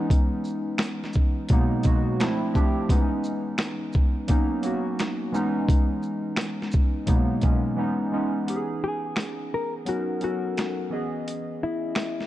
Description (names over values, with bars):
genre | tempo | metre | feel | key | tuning
lo-fi hip hop | 86 BPM | 4/4 | swing 64% on 16ths | C# dorian | A4 = 440 Hz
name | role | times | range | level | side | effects
warbly lo-fi synth keys | accompaniment | 0.0-12.3 s | B2 to D#5 | -26 LUFS | equal | chorus, cassette tape, low-pass filter
boom bap sampler-style drum kit | drums | 0.1-12.3 s | finger snaps, hi-hat, kick drum, shaker, snare drum | -23 LUFS | equal | vintage 12-bit sampler grit
hollow-body jazz guitar | melody | 8.8-12.3 s | E4 to A#4 | -30 LUFS | left 4 dB | low-pass filter, tape echo
room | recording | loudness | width
light reverb | dark, warm production | -23 LUFS | side -14 dB against mid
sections
0.0-8.5 A section; 8.5-12.3 B section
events
break 7.8-8.5, 8.5-12.3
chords
0.0 C#m7; 1.5 G#m7/B; 2.2 Dm7; 2.9 C#m7; 4.3 Bmaj7; 5.3 C#m7; 7.1 G#m7/B; 7.8 C#m7; 9.9 Bmaj7; 10.9 C#m7